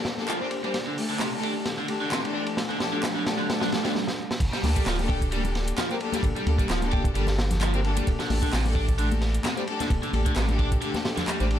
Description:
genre	breakbeat, breaks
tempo	131 BPM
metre	4/4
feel	swing 55% on 16ths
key	G minor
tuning	A4 = 440 Hz
part	rich chamber string section	stabs	0.0-11.6 s	A3 to C5	-30 LUFS	left 3 dB	ping-pong delay
part	saturated sub bass	bass	0.0-11.6 s	D1 to D2	-26 LUFS	equal	high-pass filter
part	crunchy breakbeat drum kit	drums	0.0-11.6 s	crash cymbal, hi-hat, kick drum, ride cymbal, snare drum	-28 LUFS	right 1 dB	none
part	riser	sound effects	0.9-4.0 s	none	-38 LUFS	right 3 dB	none
part	overdriven electric guitar	riff	0.3-11.5 s	C3 to G4	-32 LUFS	right 1 dB	vintage 12-bit sampler grit, low-pass filter, ping-pong delay
part	garage drum kit	drums	0.3-11.5 s	handclaps, hi-hat	-36 LUFS	equal	none
part	congas	percussion	4.6-11.4 s	none	-35 LUFS	left 5 dB	none
room	light reverb, small room ambience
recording	dark, warm production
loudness	-23 LUFS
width	side -10 dB against mid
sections	0.0-4.4 A section; 4.4-11.6 B section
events	build-up 0.0-4.4; drum fill 0.7-4.0, 4.0-4.4; riser 0.9-4.0; stop 4.0-4.4; drop 4.4-11.6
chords	0.0 Gmadd9; 0.7 Dsus4; 4.4 Gmadd9; 8.1 Dsus4

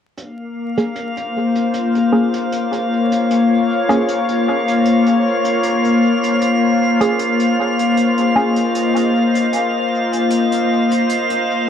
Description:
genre	ambient dub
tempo	77 BPM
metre	4/4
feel	swing 53% on 16ths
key	Bb minor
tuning	A4 = 440 Hz
part	soft additive organ-like pad	sustained chords	0.4-11.7 s	Bb3 to Eb5	-16 LUFS	left 2 dB	ensemble chorus, built-in reverb
part	hi-hat	drums	0.2-11.4 s	none	-34 LUFS	right 1 dB	low-pass filter on hats, low-pass filter on room, dub echo
part	drifting glass-harmonics texture	texture	0.6-11.7 s	F5	-22 LUFS	equal	chorus, built-in reverb
part	filtered dub chord stab	stabs	0.8-10.1 s	Bb3 to Ab4	-21 LUFS	right 1 dB	chorus, dub echo
room	wet spring reverb, RT60 1.9 s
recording	echo-heavy mix, vinyl crackle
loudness	-14 LUFS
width	side -8 dB against mid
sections	0.2-11.7 A section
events	filter sweep on ambient pad 0.2-11.7; filter sweep on synth stab 0.2-11.7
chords	0.2 Bbm7

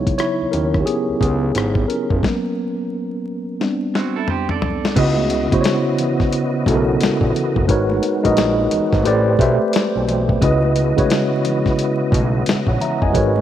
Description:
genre	R&B, neo-soul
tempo	88 BPM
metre	4/4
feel	swing 62% on 16ths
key	C# dorian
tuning	A4 = 440 Hz
part	mellow tine electric piano	accompaniment	0.0-13.4 s	C#3 to A#5	-18 LUFS	equal	medium stereo tremolo
part	fat analog bass	bass	0.0-13.4 s	F#1 to D#2	-20 LUFS	equal	none
part	dusty soul sampler-style drum kit	drums	0.1-13.3 s	crash cymbal, hi-hat, kick drum, rim click, snare drum, toms	-20 LUFS	left 2 dB	none
part	electric guitar through a small old amp	second line	4.0-4.9 s	B#3 to D5	-25 LUFS	right 11 dB	none
part	percussive tonewheel organ	sustained chords	5.0-13.4 s	C#3 to D#5	-27 LUFS	right 1 dB	slow rotary speaker, overdrive, chorus vibrato
part	congas	percussion	5.2-13.4 s	none	-32 LUFS	right 1 dB	none
room	light reverb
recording	1960s-style stereo, vinyl crackle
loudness	-16 LUFS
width	side -11 dB against mid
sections	0.0-5.0 A section; 5.0-13.4 B section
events	tine electric piano solo 0.0-5.0; stop 2.2-5.0; drum fill 3.6-5.0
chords	0.0 C#m11; 2.2 F#add11; 3.6 Gadd9; 5.0 C#m11; 7.7 G#m11; 9.1 Am11; 10.4 C#m11

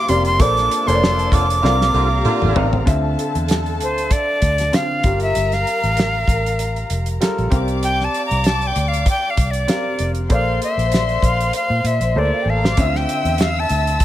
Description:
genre	lush 1970s-style soul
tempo	97 BPM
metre	4/4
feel	swing 54% on 16ths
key	D minor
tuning	A4 = 435 Hz
part	breathy bright jazz flute	melody	0.0-14.0 s	C5 to D6	-20 LUFS	equal	none
part	dark studio string section	second line	0.0-14.0 s	E4 to E6	-26 LUFS	left 2 dB	none
part	clear concert grand piano	accompaniment	0.0-14.0 s	D3 to F5	-24 LUFS	equal	none
part	warm woodwind section	sustained chords	0.0-2.9 s	C3 to A4	-31 LUFS	equal	none
part	vintage muted fingered electric bass	bass	0.1-14.0 s	F1 to Bb2	-20 LUFS	equal	none
part	damped 70s drum kit	drums	0.1-14.0 s	hi-hat, kick drum, snare drum, toms	-20 LUFS	equal	none
part	clear horn section	stabs	1.3-2.8 s	D3 to F4	-25 LUFS	right 2 dB	none
room	light reverb, small room ambience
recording	none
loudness	-15 LUFS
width	side -13 dB against mid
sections	0.0-2.9 A section; 2.9-14.0 B section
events	band accent 0.4-2.9; drum fill 1.6-2.9, 12.2-12.8; flute solo 2.9-14.0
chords	0.4 Bbmaj9; 1.6 C9sus4; 2.9 Dm9; 5.0 Gm9; 7.5 C7sus4; 10.3 Bbmaj9; 12.8 Dm9

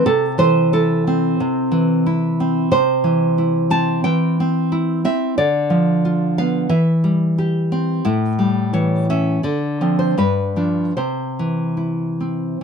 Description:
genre	romantic piece for solo classical guitar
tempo	72-93 BPM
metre	4/4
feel	rubato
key	unclear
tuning	A4 = 439 Hz
part	nylon-string guitar	solo	0.0-12.6 s	G2 to A5	-16 LUFS	equal	none
room	light reverb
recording	minimal, uncompressed stereo recording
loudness	-16 LUFS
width	side -6 dB against mid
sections	0.0-12.6 A section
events	none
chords	0.1 Am/C; 5.4 Bdim/D; 6.7 C/E; 8.0 A7; 9.4 Dm7; 10.2 G7; 11.0 C

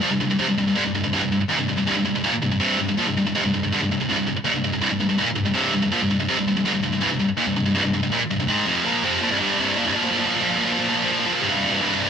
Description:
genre	metal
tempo	163 BPM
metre	4/4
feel	straight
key	C minor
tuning	A4 = 440 Hz
part	high-gain distorted guitar	solo	0.0-12.1 s	C2 to Bb3	-19 LUFS	equal	distortion
room	moderate stone room reverb, RT60 1.4 s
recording	band playing live in one room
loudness	-19 LUFS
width	side -7 dB against mid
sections	0.0-10.0 A section; 10.0-12.1 B section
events	none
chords	0.0 C5; 10.0 Bb5; 11.4 C5

